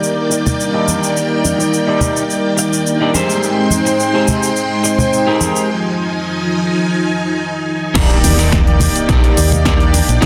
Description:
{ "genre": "nu-disco, nu disco", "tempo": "106 BPM", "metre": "4/4", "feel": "straight", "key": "Eb major", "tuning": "A4 = 445 Hz", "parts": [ { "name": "warm analog pad", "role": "accompaniment", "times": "0.0-10.3 s", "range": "G3 to G5", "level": "-19 LUFS", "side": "equal", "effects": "subtle chorus, sidechain pumping, slapback echo" }, { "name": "string machine, full ensemble", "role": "sustained chords", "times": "0.0-10.3 s", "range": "Eb3 to C6", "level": "-22 LUFS", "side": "equal", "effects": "ensemble chorus, sidechain pumping" }, { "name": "house drum kit", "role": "drums", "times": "0.0-10.3 s", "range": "cabasa, crash cymbal, hi-hat, snare drum", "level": "-22 LUFS", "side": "equal", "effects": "none" }, { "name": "electric guitar at the edge of break-up", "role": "riff", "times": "0.3-10.3 s", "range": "Eb4 to D5", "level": "-23 LUFS", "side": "equal", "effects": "lush chorus, low-pass filter, slapback echo" }, { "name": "congas", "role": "percussion", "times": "0.5-10.1 s", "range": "none", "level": "-23 LUFS", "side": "equal", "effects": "none" }, { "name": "fingered electric bass with an envelope filter", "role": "bass", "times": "8.0-10.3 s", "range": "Bb1 to Eb2", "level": "-17 LUFS", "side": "equal", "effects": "none" }, { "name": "electronic kick drum", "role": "drums", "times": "8.0-10.3 s", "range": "none", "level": "-17 LUFS", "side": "equal", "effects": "none" }, { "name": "impact", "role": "sound effects", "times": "8.0-10.2 s", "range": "none", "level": "-27 LUFS", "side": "equal", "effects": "none" } ], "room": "moderate plate reverb, RT60 1.6 s, digital ambience", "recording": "dense, heavily limited modern master", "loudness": "-15 LUFS", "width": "mono", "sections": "0.0-8.0 A section; 8.0-10.3 B section", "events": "filter sweep on clean electric guitar 0.0-8.0; break 5.7-8.0; drop 8.0-10.3; impact 8.0-10.2", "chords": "0.0 Ebmaj7; 3.1 Abmaj7; 5.7 Fm7; 8.0 Ebmaj7", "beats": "0.03 0.60 | 1.16 1.73 2.29 2.86 | 3.43 3.99 4.56 5.12 | 5.69 6.26 6.82 7.39 | 7.95 8.52 9.09 9.65 | 10.22" }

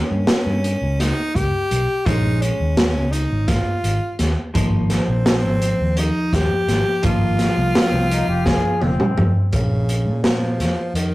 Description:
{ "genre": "progressive instrumental, band music in an uneven meter", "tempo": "169 BPM (eighths)", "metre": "7/8", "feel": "straight", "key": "Bb dorian", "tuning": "A4 = 439 Hz", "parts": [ { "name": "edgy tenor saxophone", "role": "melody", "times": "0.0-11.1 s", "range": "Db3 to G4", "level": "-23 LUFS", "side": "equal", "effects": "none" }, { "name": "vintage hollow-body jazz guitar", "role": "accompaniment", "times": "0.0-9.5 s", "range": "F3 to G4", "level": "-25 LUFS", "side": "equal", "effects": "none" }, { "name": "fingered electric bass", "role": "bass", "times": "0.1-11.1 s", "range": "F1 to Bb2", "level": "-21 LUFS", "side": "equal", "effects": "none" }, { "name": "crunchy breakbeat drum kit", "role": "drums", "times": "0.3-11.1 s", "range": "hi-hat, kick drum, snare drum, toms", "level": "-20 LUFS", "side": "equal", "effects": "none" }, { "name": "warm flugelhorn", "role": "second line", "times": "7.7-9.5 s", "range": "C4 to Ab4", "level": "-25 LUFS", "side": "left 2 dB", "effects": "none" } ], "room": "wet small room reverb, RT60 0.5 s", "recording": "rough rehearsal-room recording, warm saturation", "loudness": "-16 LUFS", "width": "side -18 dB against mid", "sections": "0.0-9.5 A section; 9.5-11.1 B section", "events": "drum fill 8.5-9.5", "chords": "0.0 Eb7; 2.1 Bbm7; 4.5 Fm7/Ab; 7.0 Ab6; 9.5 Bbm", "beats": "0.28 0.64 0.99 1.35 1.70 | 2.06 2.42 2.77 3.13 3.48 3.84 4.19 | 4.55 4.90 5.26 5.61 5.97 6.33 6.68 | 7.04 7.39 7.75 8.10 8.46 8.81 9.17 | 9.52 9.88 10.23 10.59 10.94" }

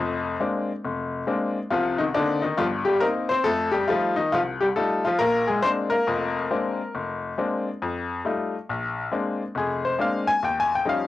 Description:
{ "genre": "solo jazz", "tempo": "138 BPM", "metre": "4/4", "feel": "swing 65% on 8ths", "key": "Bb mixolydian", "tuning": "A4 = 440 Hz", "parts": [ { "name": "bright upright piano", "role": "solo", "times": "0.0-11.1 s", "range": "F1 to Ab5", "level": "-22 LUFS", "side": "left 2 dB", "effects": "cassette tape" } ], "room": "moderate small room reverb, RT60 0.5 s", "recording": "home recording on cassette", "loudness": "-22 LUFS", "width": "side -14 dB against mid", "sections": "0.0-8.7 A section; 8.7-11.1 B section", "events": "upright piano solo 8.7-11.1", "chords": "0.0 Bb9; 1.7 Cm7; 3.4 F9; 5.2 Bb9; 7.8 F9; 8.7 Bb9; 10.4 Eb9", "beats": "0.40 0.83 1.27 | 1.71 2.14 2.58 3.01 | 3.45 3.88 4.32 4.75 | 5.19 5.63 6.06 6.50 | 6.93 7.37 7.80 8.24 | 8.68 9.11 9.55 9.98 | 10.42 10.85" }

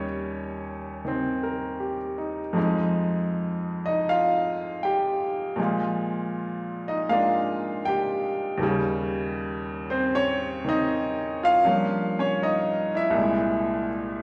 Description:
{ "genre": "solo jazz", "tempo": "79 BPM", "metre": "4/4", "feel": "swing 69% on 8ths", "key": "Eb mixolydian", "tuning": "A4 = 440 Hz", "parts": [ { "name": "bright upright piano", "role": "solo", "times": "0.0-14.2 s", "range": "C2 to G5", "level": "-26 LUFS", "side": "equal", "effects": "none" } ], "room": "wet recital hall reverb, RT60 1.4 s", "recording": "recorded in a church or concert hall, nothing above 11.0 kHz", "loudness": "-26 LUFS", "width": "mono", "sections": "0.0-14.2 A section", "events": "none", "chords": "0.0 Eb7; 2.6 Fm7; 5.6 Bb7; 8.6 Eb7; 11.6 Gm7b5; 13.1 C7b13", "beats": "0.29 1.05 1.80 | 2.56 3.32 4.08 4.83 | 5.59 6.34 7.10 7.86 | 8.61 9.37 10.12 10.88 | 11.63 12.39 13.15 13.90" }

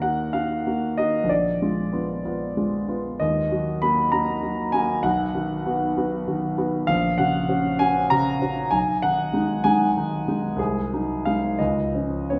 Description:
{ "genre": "classical, romantic character piece for solo piano", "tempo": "64 BPM (dotted quarters)", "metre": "6/8", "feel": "rubato", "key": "Eb minor, F# major from 6.9 s", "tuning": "A4 = 439 Hz", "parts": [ { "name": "warm grand piano", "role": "solo", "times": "0.0-12.4 s", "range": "Bb1 to Cb6", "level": "-23 LUFS", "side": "equal", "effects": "none" } ], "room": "wet recital hall reverb, RT60 1.5 s", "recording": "recorded in a church or concert hall, nothing above 10.9 kHz", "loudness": "-23 LUFS", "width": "mono", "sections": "0.0-12.4 A section", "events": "none", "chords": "0.0 Ebm; 1.3 Bb7b9; 3.2 Ebm; 5.0 B; 6.9 F#/A#; 8.7 G#m/B; 10.6 G#7/B#; 11.6 C#", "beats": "0.35 | 1.30 2.25 | 3.20 4.12 | 5.04 5.97 | 6.89 7.81 | 8.73 9.65 | 10.60 11.60" }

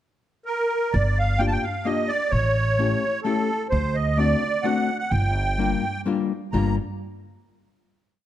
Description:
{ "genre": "musette waltz", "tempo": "129 BPM", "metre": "3/4", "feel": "straight", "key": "G minor", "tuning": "A4 = 440 Hz", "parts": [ { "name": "musette accordion", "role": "melody", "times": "0.5-6.8 s", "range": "A4 to Bb5", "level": "-24 LUFS", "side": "right 2 dB", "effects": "none" }, { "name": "upright bass", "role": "bass", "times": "0.9-6.8 s", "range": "G1 to D2", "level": "-24 LUFS", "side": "right 1 dB", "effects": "none" }, { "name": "archtop guitar, miked and amplified", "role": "accompaniment", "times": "1.4-6.8 s", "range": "G3 to G4", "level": "-26 LUFS", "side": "left 6 dB", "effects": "none" } ], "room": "light reverb", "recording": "dark, warm production", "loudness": "-21 LUFS", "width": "side -12 dB against mid", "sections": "0.0-0.9 pickup bar; 0.9-6.5 A section; 6.5-7.9 final chord", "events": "none", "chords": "0.0 N.C.; 0.9 Gm7; 2.3 A7; 3.7 D7; 5.1 Gm7", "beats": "0.01 0.47 | 0.94 1.40 1.87 | 2.33 2.79 3.25 | 3.72 4.18 4.65 | 5.12 5.59 6.06 | 6.53" }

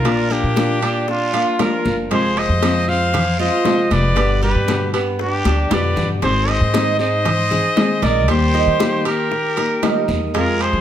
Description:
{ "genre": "latin, Cuban son and guajira", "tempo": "117 BPM", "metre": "4/4", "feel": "straight", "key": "unclear", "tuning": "A4 = 440 Hz", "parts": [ { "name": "breathy trumpet", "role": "melody", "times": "0.0-10.8 s", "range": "F4 to F5", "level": "-21 LUFS", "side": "equal", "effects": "analog delay" }, { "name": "brilliant trumpet", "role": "second line", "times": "0.0-10.8 s", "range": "D4 to C5", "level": "-26 LUFS", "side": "left 5 dB", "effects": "none" }, { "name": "nylon-string guitar", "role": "accompaniment", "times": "0.0-10.8 s", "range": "B2 to Ab4", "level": "-23 LUFS", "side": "left 4 dB", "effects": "none" }, { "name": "Cuban tres", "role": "arpeggios", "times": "0.0-10.8 s", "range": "G3 to Eb5", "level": "-23 LUFS", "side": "right 6 dB", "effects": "none" }, { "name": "upright bass", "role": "bass", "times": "0.0-10.8 s", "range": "F1 to F3", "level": "-21 LUFS", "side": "equal", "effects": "none" }, { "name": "guiro", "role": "percussion", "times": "0.0-10.8 s", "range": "none", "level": "-34 LUFS", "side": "right 2 dB", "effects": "none" }, { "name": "bongos", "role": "percussion", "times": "0.1-10.8 s", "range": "none", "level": "-27 LUFS", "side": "left 7 dB", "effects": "none" }, { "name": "congas", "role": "percussion", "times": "0.1-10.8 s", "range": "none", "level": "-24 LUFS", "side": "left 2 dB", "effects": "none" }, { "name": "timbales", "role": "percussion", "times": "0.1-10.8 s", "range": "none", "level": "-27 LUFS", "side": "right 6 dB", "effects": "none" } ], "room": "moderate studio reverb, RT60 0.6 s", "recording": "none", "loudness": "-15 LUFS", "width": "side -10 dB against mid", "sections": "0.0-10.8 A section", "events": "drum fill 5.5-6.2", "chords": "0.1 Bb; 2.1 Fm; 4.2 G; 6.2 Ab; 8.3 Eb", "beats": "| 0.05 0.57 1.08 1.59 | 2.11 2.62 3.14 3.65 | 4.17 4.68 5.20 5.71 | 6.23 6.74 7.26 7.77 | 8.29 8.80 9.32 9.83 | 10.35" }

